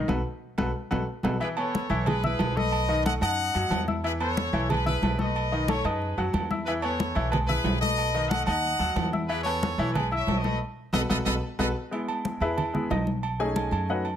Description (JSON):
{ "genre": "latin, salsa", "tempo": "183 BPM", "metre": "4/4", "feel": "straight", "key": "E major", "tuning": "A4 = 440 Hz", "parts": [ { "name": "bright baby grand piano", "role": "accompaniment", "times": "0.0-14.1 s", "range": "D#3 to E6", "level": "-30 LUFS", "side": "left 2 dB", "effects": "none" }, { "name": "upright bass", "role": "bass", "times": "0.0-14.2 s", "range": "B1 to F#2", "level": "-30 LUFS", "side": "right 1 dB", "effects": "none" }, { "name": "congas", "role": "percussion", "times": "0.1-14.2 s", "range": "none", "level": "-32 LUFS", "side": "left 2 dB", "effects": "none" }, { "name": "timbales and agogo bells", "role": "percussion", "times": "0.1-14.2 s", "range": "none", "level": "-32 LUFS", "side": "right 5 dB", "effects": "none" }, { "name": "bright trumpet section", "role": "melody", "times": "1.4-11.7 s", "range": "G#4 to F#5", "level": "-29 LUFS", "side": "left 1 dB", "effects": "none" } ], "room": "light reverb", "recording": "close, detailed microphones", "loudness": "-24 LUFS", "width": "side -10 dB against mid", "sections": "0.0-1.4 A section; 1.4-11.9 B section; 11.9-14.2 C section", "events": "band accent 0.1-1.4, 10.6-11.9; drum fill 0.4-1.4, 10.9-11.9; grand piano solo 11.9-14.2", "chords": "0.1 B5; 1.4 E; 2.7 B7; 4.0 E; 5.4 B7; 6.7 E; 8.0 B7; 9.3 E; 10.6 B7; 11.9 E; 13.2 B7" }